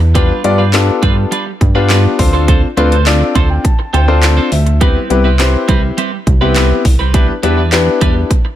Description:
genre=dance-pop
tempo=103 BPM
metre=4/4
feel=straight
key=C major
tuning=A4 = 440 Hz
part: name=twelve-string electric guitar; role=riff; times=0.0-8.5 s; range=G3 to C5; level=-20 LUFS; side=right 6 dB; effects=wide subtle chorus
part: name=chorused synth bass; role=bass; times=0.0-8.2 s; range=C2 to G2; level=-12 LUFS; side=equal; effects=sidechain pumping
part: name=dark baby grand piano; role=accompaniment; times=0.1-8.3 s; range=B3 to C6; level=-15 LUFS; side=left 4 dB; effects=sidechain pumping
part: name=house drum kit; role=drums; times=0.2-8.4 s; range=handclaps, hi-hat, kick drum, snare drum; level=-14 LUFS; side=equal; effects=none
room=little or no reverb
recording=none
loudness=-9 LUFS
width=side -12 dB against mid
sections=0.0-8.6 A section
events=grand piano fill 3.1-4.8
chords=0.2 G7; 2.2 Dm7; 4.8 Cmaj7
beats=| 0.15 0.73 1.32 1.90 | 2.48 3.06 3.65 4.23 | 4.81 5.39 5.98 6.56 | 7.14 7.72 8.31

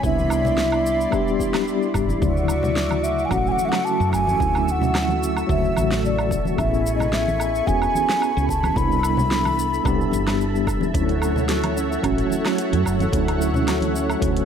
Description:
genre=sunset chillout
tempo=110 BPM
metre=4/4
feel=swing 54% on 16ths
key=unclear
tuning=A4 = 440 Hz
part: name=mellow hollow wooden flute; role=melody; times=0.0-10.4 s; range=D5 to B5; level=-24 LUFS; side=equal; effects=digital delay
part: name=mellow tine electric piano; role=accompaniment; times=0.0-14.4 s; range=C#3 to G#4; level=-24 LUFS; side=moving between left 6 dB and right 6 dB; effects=medium stereo tremolo, auto-pan, digital delay
part: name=lush unison pad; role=sustained chords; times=0.0-14.4 s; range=E4 to E6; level=-30 LUFS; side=equal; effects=chorus
part: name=woody fretless electric bass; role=bass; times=0.0-14.4 s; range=E1 to F#2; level=-24 LUFS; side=equal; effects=wide subtle chorus
part: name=deep house drum kit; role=drums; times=0.0-14.4 s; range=hi-hat, shaker, snare drum, woodblock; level=-29 LUFS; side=right 1 dB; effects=none
part: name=electronic kick drum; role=drums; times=0.0-14.3 s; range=none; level=-28 LUFS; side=equal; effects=none
part: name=congas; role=percussion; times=0.2-13.9 s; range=none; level=-30 LUFS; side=left 2 dB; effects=none
part: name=wind-like tuned noise texture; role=texture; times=3.1-14.4 s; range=A4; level=-32 LUFS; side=right 2 dB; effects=built-in reverb
part: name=soft round pluck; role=arpeggios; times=10.9-14.4 s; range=C#4 to F#4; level=-29 LUFS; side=right 2 dB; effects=wide subtle chorus, digital delay
room=moderate lush hall reverb, RT60 1.8 s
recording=none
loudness=-18 LUFS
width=side -8 dB against mid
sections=0.0-2.2 A section; 2.2-14.4 A section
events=none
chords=0.0 Cmaj9; 2.2 Dmaj9; 6.6 Amaj9; 8.8 Cmaj9; 10.9 Dmaj9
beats=| 0.04 0.58 1.13 1.67 | 2.22 2.76 3.31 3.85 | 4.40 4.95 5.49 6.04 | 6.58 7.13 7.67 8.22 | 8.76 9.31 9.85 10.40 | 10.95 11.49 12.04 12.58 | 13.13 13.67 14.22

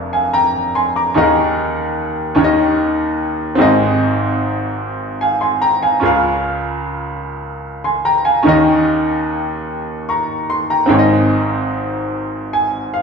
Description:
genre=gospel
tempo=49 BPM (dotted quarters)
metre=6/8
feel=straight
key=Ab major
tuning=A4 = 440 Hz
part: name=clear baby grand piano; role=solo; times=0.0-13.0 s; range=F1 to D6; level=-14 LUFS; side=equal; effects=none
room=wet large studio reverb, RT60 1.3 s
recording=band playing live in one room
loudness=-14 LUFS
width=side -5 dB against mid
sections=0.0-13.0 A section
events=grand piano fill 12.1-13.0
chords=0.0 Bb7/F; 1.1 Eb7sus4; 2.4 Eb7; 3.6 Abmaj7; 6.0 Db6; 8.5 Eb7; 10.9 Abmaj7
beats=| 1.14 2.35 | 3.58 4.79 | 6.02 7.24 | 8.46 9.68 | 10.91 12.13

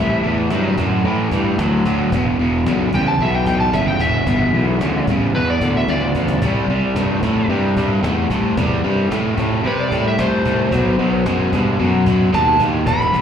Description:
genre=blues rock power trio and southern rock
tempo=112 BPM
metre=4/4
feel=straight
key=E minor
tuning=A4 = 440 Hz
part: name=overdriven slide guitar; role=melody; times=0.0-13.2 s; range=B4 to B5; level=-21 LUFS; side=equal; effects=slapback echo
part: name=crunchy overdriven guitar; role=riff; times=0.0-13.2 s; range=E2 to A3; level=-18 LUFS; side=equal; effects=slapback echo
part: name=fuzz fingered electric bass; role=bass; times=0.0-13.2 s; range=E1 to C3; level=-20 LUFS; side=equal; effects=overdrive
part: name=cajon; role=drums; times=0.2-13.2 s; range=none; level=-28 LUFS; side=equal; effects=none
room=little or no reverb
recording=live gig heard through the venue's PA, club reverb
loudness=-15 LUFS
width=side -8 dB against mid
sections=0.0-13.2 A section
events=drum fill 5.9-6.4, 12.9-13.2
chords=0.0 A7(no3); 2.1 E7(no3); 6.4 C5; 10.7 B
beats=0.51 1.05 1.58 | 2.12 2.66 3.20 3.73 | 4.27 4.81 5.34 5.88 | 6.42 6.96 7.49 8.03 | 8.57 9.10 9.64 10.18 | 10.71 11.25 11.79 12.33 | 12.86

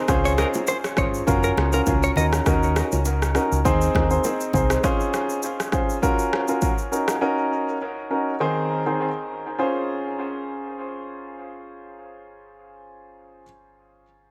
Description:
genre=afrobeats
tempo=101 BPM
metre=4/4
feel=swing 55% on 16ths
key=Db major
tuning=A4 = 439 Hz
part: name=clear grand piano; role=accompaniment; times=0.0-13.4 s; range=Eb3 to C5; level=-26 LUFS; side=equal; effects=dub echo
part: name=hollow-body short-scale fingered electric bass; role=bass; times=0.1-4.8 s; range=Gb1 to Eb2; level=-26 LUFS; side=equal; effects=none
part: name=afro-pop drum kit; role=drums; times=0.1-7.2 s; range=kick drum, rim click, shaker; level=-28 LUFS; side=equal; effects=none
part: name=congas and bongos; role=percussion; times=0.1-4.7 s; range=none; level=-36 LUFS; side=equal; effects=none
part: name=direct-recorded clean electric guitar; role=riff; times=0.3-2.3 s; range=Bb4 to Eb5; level=-30 LUFS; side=equal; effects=dub echo
room=light reverb, small room ambience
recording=echo-heavy mix, faint mains hum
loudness=-22 LUFS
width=mono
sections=0.1-9.6 A section; 9.6-12.0 B section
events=none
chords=0.1 Dbmaj7; 1.3 Gbmaj7; 2.2 Ebm7; 3.6 Ab/Eb; 4.8 Dbmaj7; 6.0 Gbmaj7; 6.9 Ebm7; 8.4 Ab/Eb; 9.6 Dbmaj7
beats=| 0.09 0.68 1.27 1.87 | 2.46 3.06 3.65 4.24 | 4.84 5.43 6.03 6.62 | 7.21 7.81 8.40 9.00 | 9.59 10.18 10.78 11.37

